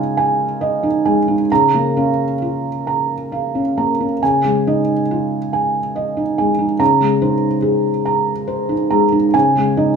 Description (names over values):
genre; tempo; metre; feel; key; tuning
neoclassical minimalist piano; 44-48 BPM (dotted quarters); 6/8; rubato; Db major; A4 = 437 Hz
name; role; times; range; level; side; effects
felt-muted upright piano; solo; 0.0-10.0 s; Db3 to Bb5; -14 LUFS; right 1 dB; none
room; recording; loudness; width
moderate studio reverb, RT60 0.5 s; studio reverb; -14 LUFS; side -6 dB against mid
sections
0.0-10.0 A section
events
none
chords
0.0 Dbadd9; 1.5 Bbm/Db; 4.2 Dbadd9; 6.8 Abadd9/Db; 9.3 Dbsus2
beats
0.16 | 1.50 2.85 | 4.21 5.52 | 6.80 8.06 | 9.34